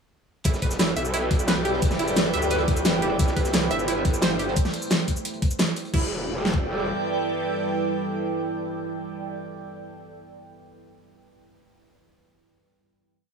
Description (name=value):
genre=dark technical drum and bass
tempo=175 BPM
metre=4/4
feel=straight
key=E minor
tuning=A4 = 440 Hz
part: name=crunchy breakbeat drum kit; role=drums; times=0.4-5.9 s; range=hi-hat, snare drum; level=-35 LUFS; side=equal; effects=high-pass filter on hats, high-pass filter on snare, high-pass filter on room
part: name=deep dark ambient pad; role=sustained chords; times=1.0-9.4 s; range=G3 to C5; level=-30 LUFS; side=right 1 dB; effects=chorus, built-in reverb, sidechain pumping
part: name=analog pluck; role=arpeggios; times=0.5-6.1 s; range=E4 to E5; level=-30 LUFS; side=right 4 dB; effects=chorus, sidechain pumping, digital delay
part: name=growl bass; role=bass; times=0.5-6.9 s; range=E1 to D2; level=-28 LUFS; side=equal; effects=chorus, overdrive, sidechain pumping
part: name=dubstep drum kit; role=drums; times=0.5-6.6 s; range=kick drum, snare drum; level=-23 LUFS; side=left 1 dB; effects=overdrive
part: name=dubstep drum kit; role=drums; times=0.5-6.0 s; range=crash cymbal, hi-hat, shaker, snare drum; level=-26 LUFS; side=equal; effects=overdrive
part: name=airy breathy pad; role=texture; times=0.9-9.4 s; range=E4 to G5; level=-31 LUFS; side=right 1 dB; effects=chorus, phaser, sidechain pumping
room=light reverb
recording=none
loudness=-22 LUFS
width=side -6 dB against mid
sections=0.5-5.9 drop; 5.9-8.7 final chord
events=drop 0.5-5.9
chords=0.5 Em; 3.2 C6; 5.9 Em